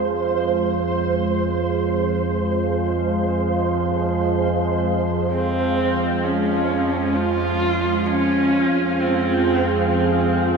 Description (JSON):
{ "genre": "dark ambient drone", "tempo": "free time", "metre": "none", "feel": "none", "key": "F minor", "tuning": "A4 = 440 Hz", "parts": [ { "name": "deep dark ambient pad", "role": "sustained chords", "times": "0.0-10.6 s", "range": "F2 to F5", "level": "-24 LUFS", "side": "right 2 dB", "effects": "chorus, built-in reverb" }, { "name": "analog drone", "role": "drone", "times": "0.0-10.6 s", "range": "F2 to F3", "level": "-22 LUFS", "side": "right 2 dB", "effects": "chorus" }, { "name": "flickering grainy texture", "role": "texture", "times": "0.0-10.6 s", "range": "C5 to F5", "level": "-27 LUFS", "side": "right 4 dB", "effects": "built-in reverb" }, { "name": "warm horsehead fiddle", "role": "melody", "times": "5.3-10.6 s", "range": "C4 to F4", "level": "-21 LUFS", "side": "equal", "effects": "tape echo" } ], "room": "wet huge ambient reverb, RT60 8.4 s", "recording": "in a vast, echoing space, studio reverb", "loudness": "-18 LUFS", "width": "side -5 dB against mid", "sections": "0.0-10.6 A section", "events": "none", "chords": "0.0 Fm; 5.3 Db/F", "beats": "free time" }